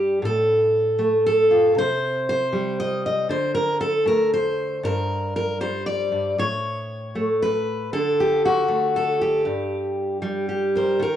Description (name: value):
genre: folk, solo fingerstyle acoustic guitar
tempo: 117 BPM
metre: 3/4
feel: straight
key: G minor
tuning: A4 = 440 Hz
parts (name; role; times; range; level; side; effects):
- fingerpicked steel-string acoustic guitar; solo; 0.0-11.2 s; G2 to Eb5; -19 LUFS; equal; cassette tape
room: wet small room ambience, RT60 0.5 s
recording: home recording on cassette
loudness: -19 LUFS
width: side -10 dB against mid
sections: 0.0-11.0 A section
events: none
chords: 0.2 F/A; 1.8 C5; 3.3 D5; 4.8 N.C.; 7.9 D; 9.5 Gm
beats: | 0.22 0.73 1.25 | 1.76 2.27 2.78 | 3.30 3.81 4.32 | 4.84 5.36 5.87 | 6.39 6.90 7.41 | 7.92 8.43 8.94 | 9.45 9.97 10.48 | 11.00